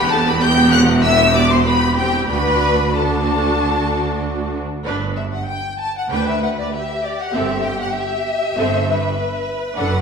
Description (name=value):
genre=quick classical-period movement for string orchestra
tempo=97 BPM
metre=4/4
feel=straight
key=G major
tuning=A4 = 438 Hz
part: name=warm symphonic violin section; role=melody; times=0.0-10.0 s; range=D5 to G6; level=-21 LUFS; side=left 3 dB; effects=none
part: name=rich symphonic violin section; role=second line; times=0.0-10.0 s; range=G4 to G5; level=-22 LUFS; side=left 2 dB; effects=none
part: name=rich studio viola section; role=accompaniment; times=0.0-10.0 s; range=B3 to B4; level=-22 LUFS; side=right 2 dB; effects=none
part: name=clear symphonic double bass section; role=bass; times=0.0-10.0 s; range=E1 to D2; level=-23 LUFS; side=right 3 dB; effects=none
part: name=rich symphonic cello section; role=bass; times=0.0-10.0 s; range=D2 to G2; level=-23 LUFS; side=right 2 dB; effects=none
room=wet recital hall reverb, RT60 1.4 s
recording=recorded in a church or concert hall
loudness=-15 LUFS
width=side -6 dB against mid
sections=0.0-4.9 A section; 4.9-10.0 B section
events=none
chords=0.0 Em; 2.3 D; 4.9 G; 7.3 Am7/G